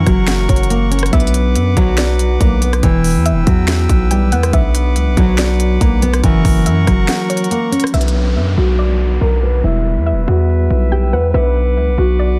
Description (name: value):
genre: hip hop, trap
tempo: 141 BPM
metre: 4/4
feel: half-time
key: B harmonic minor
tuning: A4 = 439 Hz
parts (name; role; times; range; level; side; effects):
- nylon-string guitar; melody; 0.0-12.4 s; E3 to B4; -20 LUFS; equal; low-pass filter, tape echo
- soft round pluck; second line; 0.0-12.4 s; C#5 to G5; -29 LUFS; equal; chorus, tape echo
- tine electric piano; accompaniment; 0.0-12.4 s; E3 to B4; -27 LUFS; equal; low-pass filter
- accordion; sustained chords; 0.0-12.4 s; A#4 to E6; -28 LUFS; equal; low-pass filter
- hard-hitting 808-style bass; bass; 0.0-12.4 s; E1 to F#2; -17 LUFS; equal; none
- trap drum kit; drums; 0.1-8.1 s; finger snaps, hi-hat, kick drum, rim click, snare drum; -18 LUFS; equal; none
- warm brass ensemble; stabs; 1.8-2.1, 5.2-5.5 s; D2 to F#3; -30 LUFS; equal; none
- downlifter; sound effects; 7.9-11.3 s; none; -31 LUFS; equal; none
room: digital ambience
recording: dense, heavily limited modern master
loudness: -14 LUFS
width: mono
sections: 0.0-7.9 A section; 7.9-12.4 B section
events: break 7.1-7.9; filter sweep 7.9-12.4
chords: 0.0 F#; 1.1 Bm; 2.8 Em; 4.5 Bm; 6.2 F#; 7.9 Bm; 9.6 Em; 11.3 Bm